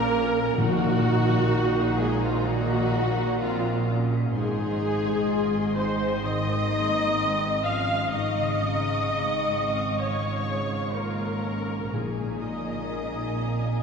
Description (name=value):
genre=cinematic, emotional film score for orchestra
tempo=63 BPM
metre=4/4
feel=rubato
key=unclear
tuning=A4 = 440 Hz
part: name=muted studio violin section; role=melody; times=0.0-13.8 s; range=F5 to F6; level=-37 LUFS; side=left 3 dB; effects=none
part: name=muted studio violin section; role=second line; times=0.0-13.8 s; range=Eb5 to Db6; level=-38 LUFS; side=left 2 dB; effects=none
part: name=warm clarinet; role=second line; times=0.0-13.8 s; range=Bb3 to F4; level=-35 LUFS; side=left 2 dB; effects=none
part: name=muted studio viola section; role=accompaniment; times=0.0-13.8 s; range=F4 to F5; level=-27 LUFS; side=right 1 dB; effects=none
part: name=mellow French horn section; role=sustained chords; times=0.0-13.8 s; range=Db3 to Eb4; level=-32 LUFS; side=left 2 dB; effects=none
part: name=concert harp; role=arpeggios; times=0.0-13.8 s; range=Ab2 to Bb5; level=-34 LUFS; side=left 3 dB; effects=none
part: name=muted studio cello section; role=bass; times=0.0-13.8 s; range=Ab2 to Bb2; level=-31 LUFS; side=right 2 dB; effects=none
part: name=muted studio double bass section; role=bass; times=0.0-13.8 s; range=Ab1 to Bb1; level=-32 LUFS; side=right 2 dB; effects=none
part: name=timpani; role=percussion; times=0.6-2.0, 11.9-13.4 s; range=Bb2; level=-30 LUFS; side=left 1 dB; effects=none
room=wet cathedral reverb, RT60 4.2 s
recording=heard from further back in the room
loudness=-23 LUFS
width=side -6 dB against mid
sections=0.0-13.8 A section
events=none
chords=0.0 Bbm7; 0.6 Ebmadd9/Bb; 4.4 Ab7; 8.1 Dbmaj7/Ab; 11.9 Bbm7